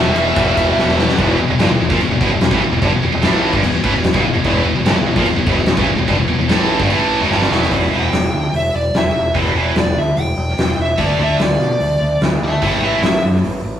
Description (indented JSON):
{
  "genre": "hard rock",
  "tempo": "147 BPM",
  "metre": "4/4",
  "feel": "straight",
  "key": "unclear",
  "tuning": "A4 = 440 Hz",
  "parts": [
    { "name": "dark smooth lead guitar", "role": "melody", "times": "0.0-0.9, 7.9-13.2 s", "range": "B4 to A5", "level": "-19 LUFS", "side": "equal", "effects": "overdrive" },
    { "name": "cranked stack guitar", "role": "riff", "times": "0.0-13.0 s", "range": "E2 to D4", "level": "-21 LUFS", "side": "left 4 dB", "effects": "overdrive" },
    { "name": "heavy high-gain guitar", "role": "riff", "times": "0.0-13.0 s", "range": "E2 to D4", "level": "-20 LUFS", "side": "right 6 dB", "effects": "distortion" },
    { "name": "heavy high-gain guitar", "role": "riff", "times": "0.0-7.7 s", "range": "E2 to A3", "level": "-22 LUFS", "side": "equal", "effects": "distortion" },
    { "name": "growling fingered electric bass", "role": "bass", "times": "0.0-13.8 s", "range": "E1 to B2", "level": "-20 LUFS", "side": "equal", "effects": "overdrive" },
    { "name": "big rock drum kit", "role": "drums", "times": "0.2-13.5 s", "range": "crash cymbal, hi-hat, kick drum, ride cymbal, snare drum", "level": "-18 LUFS", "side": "left 1 dB", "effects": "none" }
  ],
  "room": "moderate stone room reverb, RT60 1.1 s",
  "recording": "rough rehearsal-room recording, warm saturation, small room ambience",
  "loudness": "-13 LUFS",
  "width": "side -10 dB against mid",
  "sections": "0.0-1.2 A section; 1.2-7.7 B section; 7.7-13.8 C section",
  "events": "drum fill 0.8-1.2, 7.3-7.7; lead electric guitar solo 7.7-13.8",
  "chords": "0.0 E5; 11.0 D5; 12.6 A5"
}